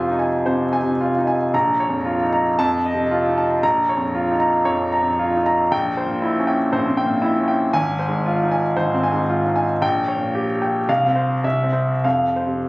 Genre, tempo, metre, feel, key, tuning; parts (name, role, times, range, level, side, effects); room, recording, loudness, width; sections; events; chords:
classical, romantic character piece for solo piano; 91-122 BPM; 4/4; rubato; F minor; A4 = 438 Hz
clear concert grand piano; solo; 0.0-12.7 s; Ab1 to Bb5; -17 LUFS; equal
light reverb; recorded on a phone in the room, club reverb; -17 LUFS; side -21 dB against mid
0.0-12.7 A section
0.0 Fm; 1.5 Bbm; 2.6 F7; 3.6 Bbm; 5.7 C7/Bb; 7.7 Fm/Ab; 9.8 Gdim/Bb; 10.9 F5/C; 11.4 C; 12.0 F5